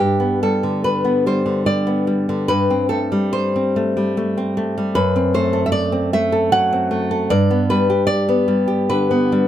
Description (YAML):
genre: romantic piece for solo classical guitar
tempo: 64-78 BPM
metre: 3/4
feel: rubato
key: G major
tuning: A4 = 443 Hz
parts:
  - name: nylon-string guitar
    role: solo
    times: 0.0-9.5 s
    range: F#2 to F#5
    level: -16 LUFS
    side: equal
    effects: none
room: light reverb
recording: none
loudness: -16 LUFS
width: side -11 dB against mid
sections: 0.0-9.5 A section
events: none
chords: 0.0 G; 2.5 Am7/G; 5.0 F#m7b5; 7.3 G